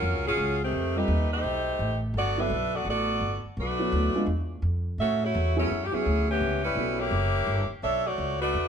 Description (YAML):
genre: jazz, big band swing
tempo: 169 BPM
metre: 4/4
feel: swing 64% on 8ths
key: F# minor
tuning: A4 = 440 Hz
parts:
  - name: bright saxophone section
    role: melody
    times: 0.0-8.7 s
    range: D#3 to E5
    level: -27 LUFS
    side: equal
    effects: none
  - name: upright bass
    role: bass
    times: 0.0-8.7 s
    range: F#1 to A2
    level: -28 LUFS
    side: equal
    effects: none
  - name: dark upright piano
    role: accompaniment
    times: 1.0-7.1 s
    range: F#3 to A4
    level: -31 LUFS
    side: right 2 dB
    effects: none
room: moderate stone room reverb, RT60 1.1 s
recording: band playing live in one room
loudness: -24 LUFS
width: side -7 dB against mid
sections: 0.0-8.7 A section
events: none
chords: 0.0 F#maj7; 0.7 F9; 2.1 Gmaj9; 3.6 Bm7; 4.3 N.C.; 5.0 A6; 6.4 C#m7b5; 7.1 F#7b9; 7.8 Bm11